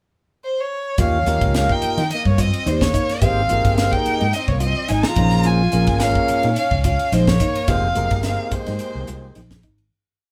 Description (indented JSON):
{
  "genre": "electric jazz fusion",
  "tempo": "108 BPM",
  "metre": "4/4",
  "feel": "swing 54% on 16ths",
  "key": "Ab major",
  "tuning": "A4 = 440 Hz",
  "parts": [
    { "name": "warm violin", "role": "melody", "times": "0.4-9.4 s", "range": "C5 to Bb5", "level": "-24 LUFS", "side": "equal", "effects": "none" },
    { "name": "breathy tenor saxophone", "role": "second line", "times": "1.0-9.4 s", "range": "G3 to F4", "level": "-31 LUFS", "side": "equal", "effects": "none" },
    { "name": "tonewheel organ", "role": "accompaniment", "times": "1.0-9.4 s", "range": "Bb3 to Db5", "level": "-28 LUFS", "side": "equal", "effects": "slow rotary speaker" },
    { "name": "mellow electric guitar", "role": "stabs", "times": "1.0-9.8 s", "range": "Eb4 to G4", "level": "-32 LUFS", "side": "equal", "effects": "none" },
    { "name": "mellow fretless electric bass", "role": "bass", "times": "1.0-9.9 s", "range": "F1 to Eb3", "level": "-23 LUFS", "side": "equal", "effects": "none" },
    { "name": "crisp fusion drum kit", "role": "drums", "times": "1.0-9.9 s", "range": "hi-hat, kick drum, ride cymbal, snare drum", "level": "-25 LUFS", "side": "equal", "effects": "none" }
  ],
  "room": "moderate small room reverb, RT60 0.5 s",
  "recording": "band playing live in one room",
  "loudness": "-19 LUFS",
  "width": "mono",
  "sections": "0.0-1.0 pickup bar; 1.0-9.9 A section",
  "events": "fade-out 7.7-9.9",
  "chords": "0.0 N.C.; 1.0 Eb9; 3.2 Abmaj9; 5.2 Bbm7; 7.7 Fm11; 8.5 Abmaj9"
}